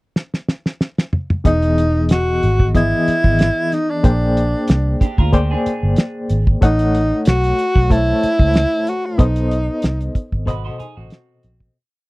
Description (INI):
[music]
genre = lush 1970s-style soul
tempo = 93 BPM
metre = 4/4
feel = swing 54% on 16ths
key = unclear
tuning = A4 = 440 Hz
[part]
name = cloth-damped thuddy drum kit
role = drums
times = 0.2-11.7 s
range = hi-hat, kick drum, snare drum, toms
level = -15 LUFS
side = equal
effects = none
[part]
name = barky reed electric piano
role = accompaniment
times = 1.4-11.8 s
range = B2 to A5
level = -22 LUFS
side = left 2 dB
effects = overdrive, tremolo
[part]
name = breathy tenor saxophone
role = melody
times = 1.5-10.3 s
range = D4 to F#4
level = -18 LUFS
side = equal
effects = none
[part]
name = vintage muted fingered electric bass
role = bass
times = 1.5-11.7 s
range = E1 to D2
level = -18 LUFS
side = equal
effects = none
[part]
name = electric guitar through a small old amp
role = riff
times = 5.0-6.4, 10.5-11.7 s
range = C4 to B#4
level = -29 LUFS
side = right 5 dB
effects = phaser
[sound]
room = little or no reverb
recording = dry, close 1970s-style studio recording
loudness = -14 LUFS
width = side -21 dB against mid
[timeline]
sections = 0.0-1.5 pickup bar; 1.5-11.8 A section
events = drum fill 0.2-1.5; fade-out 9.2-11.8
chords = 0.0 N.C.; 1.5 Emaj7; 4.0 A#13; 6.6 A6; 9.2 B7b9